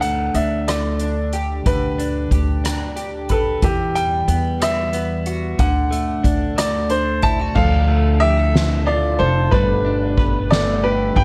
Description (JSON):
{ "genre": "six-eight pop ballad", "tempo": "61 BPM (dotted quarters)", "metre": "6/8", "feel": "straight", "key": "unclear", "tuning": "A4 = 440 Hz", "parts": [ { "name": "clear baby grand piano", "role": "melody", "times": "0.0-11.2 s", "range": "G4 to A5", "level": "-24 LUFS", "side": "equal", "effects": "tape echo" }, { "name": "direct-recorded clean electric guitar", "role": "accompaniment", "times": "0.0-11.2 s", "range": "D3 to B4", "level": "-26 LUFS", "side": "equal", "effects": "double-tracked" }, { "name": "upright bass", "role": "bass", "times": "0.0-11.2 s", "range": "F1 to E2", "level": "-24 LUFS", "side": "equal", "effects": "none" }, { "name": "soft-mallet drum kit", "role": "drums", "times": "0.0-11.2 s", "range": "crash cymbal, hi-hat, kick drum, ride cymbal, rim click, snare drum", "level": "-24 LUFS", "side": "equal", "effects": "none" }, { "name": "fingerpicked steel-string acoustic guitar", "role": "arpeggios", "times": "7.6-11.2 s", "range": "G2 to A4", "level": "-29 LUFS", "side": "equal", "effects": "tape echo" } ], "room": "light reverb, small room reverb", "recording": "none", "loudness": "-19 LUFS", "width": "mono", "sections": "0.0-7.6 A section; 7.6-11.2 B section", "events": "none", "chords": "0.0 Dsus4; 1.7 G/D; 3.6 Emadd9; 5.6 D; 7.6 Dmadd9; 9.5 Gadd9" }